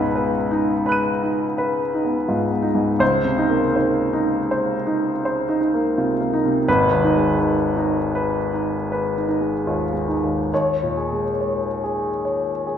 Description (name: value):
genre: classical, impressionist solo piano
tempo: 66-87 BPM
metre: 5/4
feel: rubato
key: Eb minor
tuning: A4 = 440 Hz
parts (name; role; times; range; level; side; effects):
- warm grand piano; solo; 0.0-12.8 s; Ab1 to Eb7; -18 LUFS; equal; none
room: wet concert hall reverb, RT60 1.7 s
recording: recorded in a church or concert hall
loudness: -18 LUFS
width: side -8 dB against mid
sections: 0.0-12.8 A section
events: none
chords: 0.0 Db9sus4; 3.0 Eb5/Db; 6.7 Abm6; 10.5 Eb7sus4